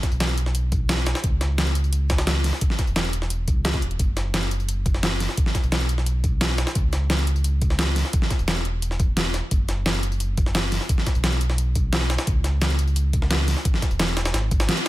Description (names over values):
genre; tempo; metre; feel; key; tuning
liquid drum and bass; 174 BPM; 4/4; straight; unclear; A4 = 440 Hz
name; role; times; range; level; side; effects
electronic kick drum; drums; 0.0-14.6 s; none; -22 LUFS; equal; none
jungle sampler-style drum kit; drums; 0.0-14.9 s; hi-hat, snare drum; -30 LUFS; equal; high-pass filter on snare, high-pass filter on hats
pop drum kit; drums; 0.0-14.9 s; hi-hat, snare drum; -26 LUFS; equal; overdrive
sub bass with octave; bass; 0.1-14.7 s; E1 to C#2; -23 LUFS; equal; none
room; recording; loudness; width
digital ambience; none; -20 LUFS; side -16 dB against mid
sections
0.0-14.9 A section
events
kick drops out 14.7; band accent 14.7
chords
none